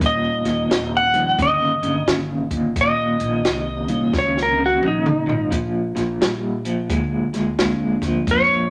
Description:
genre	electric blues shuffle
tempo	87 BPM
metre	4/4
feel	swing 63% on 8ths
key	Eb mixolydian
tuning	A4 = 440 Hz
part	reed electric piano	accompaniment	0.0-8.6 s	F3 to F4	-30 LUFS	equal	none
part	electric guitar through a small old amp	riff	0.0-8.7 s	Eb2 to Ab3	-25 LUFS	equal	tremolo
part	upright bass	bass	0.0-8.7 s	Eb1 to F2	-31 LUFS	equal	none
part	compact cocktail drum kit	drums	0.0-8.5 s	hi-hat, kick drum, snare drum, toms	-25 LUFS	equal	none
part	clean lap steel guitar	melody	0.1-8.7 s	Eb4 to Gb5	-21 LUFS	equal	none
room	moderate large studio reverb, RT60 0.8 s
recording	none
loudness	-20 LUFS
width	mono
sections	0.0-8.7 A section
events	drum fill 4.1-5.5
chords	0.0 Eb9; 5.5 Bb9

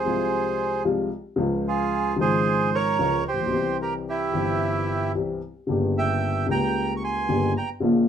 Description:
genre	tango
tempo	112 BPM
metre	4/4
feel	rubato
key	unclear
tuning	A4 = 440 Hz
part	bandoneon	melody	0.0-7.7 s	E4 to Db6	-24 LUFS	right 4 dB	none
part	dark upright piano	accompaniment	0.0-8.1 s	G1 to G4	-24 LUFS	left 2 dB	none
room	moderate studio reverb, RT60 0.5 s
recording	none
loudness	-22 LUFS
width	side -8 dB against mid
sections	0.0-8.1 A section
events	none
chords	0.0 Fm/C; 1.4 Db; 3.5 C; 5.7 Gdim

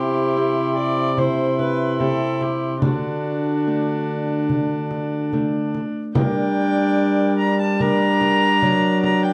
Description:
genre	classical, renaissance-style consort dance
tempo	73 BPM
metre	4/4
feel	straight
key	unclear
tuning	A4 = 444 Hz
part	alto recorder	melody	0.0-9.3 s	Bb4 to C6	-34 LUFS	equal	none
part	warm viola	second line	0.0-9.3 s	F#4 to Bb5	-26 LUFS	equal	none
part	Celtic harp	accompaniment	0.0-9.3 s	C3 to Bb4	-32 LUFS	equal	none
part	warm viola	accompaniment	0.0-9.3 s	D4 to E4	-26 LUFS	equal	none
part	warm trombone	bass	0.0-9.3 s	C3 to G3	-25 LUFS	equal	none
part	frame drum	percussion	1.2-9.3 s	none	-27 LUFS	equal	none
room	light reverb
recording	dark, warm production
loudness	-20 LUFS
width	mono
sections	0.0-6.2 A section; 6.2-9.3 A section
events	none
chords	0.0 C; 2.8 D; 6.2 Gm

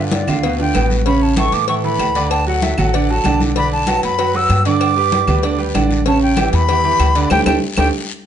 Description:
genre	latin, salsa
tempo	192 BPM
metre	4/4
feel	straight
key	G major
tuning	A4 = 439 Hz
part	silver concert flute	melody	0.0-7.9 s	D5 to E6	-18 LUFS	left 1 dB	none
part	clear baby grand piano	accompaniment	0.0-7.9 s	B2 to D5	-18 LUFS	right 5 dB	none
part	upright bass	bass	0.0-7.9 s	A1 to A2	-19 LUFS	left 1 dB	none
part	congas	percussion	0.1-7.8 s	none	-24 LUFS	left 2 dB	none
part	cowbell	percussion	0.1-7.8 s	none	-27 LUFS	left 10 dB	none
part	guiro	percussion	0.1-7.8 s	none	-31 LUFS	left 6 dB	none
part	timbales and agogo bells	percussion	0.1-7.8 s	none	-27 LUFS	right 4 dB	none
part	claves	percussion	0.3-7.8 s	none	-29 LUFS	equal	none
room	moderate studio reverb, RT60 0.8 s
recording	nothing above 10.3 kHz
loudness	-13 LUFS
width	side -9 dB against mid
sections	0.0-8.3 A section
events	drum fill 7.3-8.3; band accent 7.3-8.3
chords	0.0 G7; 1.1 A; 2.3 D; 3.6 Bm; 4.8 G; 6.1 A7; 7.3 Dsus4

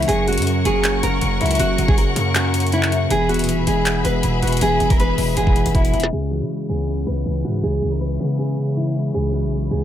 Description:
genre	hip hop, trap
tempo	159 BPM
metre	4/4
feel	half-time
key	C# dorian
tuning	A4 = 439 Hz
part	nylon-string guitar	melody	0.0-9.8 s	E4 to B4	-23 LUFS	equal	low-pass filter, ping-pong delay
part	clean electric guitar	accompaniment	0.0-9.8 s	E2 to C#4	-22 LUFS	left 1 dB	low-pass filter
part	rich symphonic string section	sustained chords	0.0-9.8 s	G#4 to C#6	-28 LUFS	left 3 dB	none
part	distorted 808-style bass	bass	0.0-9.8 s	D#1 to C#3	-23 LUFS	right 1 dB	distortion
part	trap drum kit	drums	0.0-6.1 s	handclaps, hi-hat, kick drum, snare drum	-21 LUFS	equal	none
room	little or no reverb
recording	low-pass filter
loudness	-17 LUFS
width	side -10 dB against mid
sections	0.0-6.1 A section; 6.1-9.8 B section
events	drum fill 5.4-6.1; filter sweep 6.1-9.8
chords	0.1 F#; 3.1 E; 6.1 C#m7

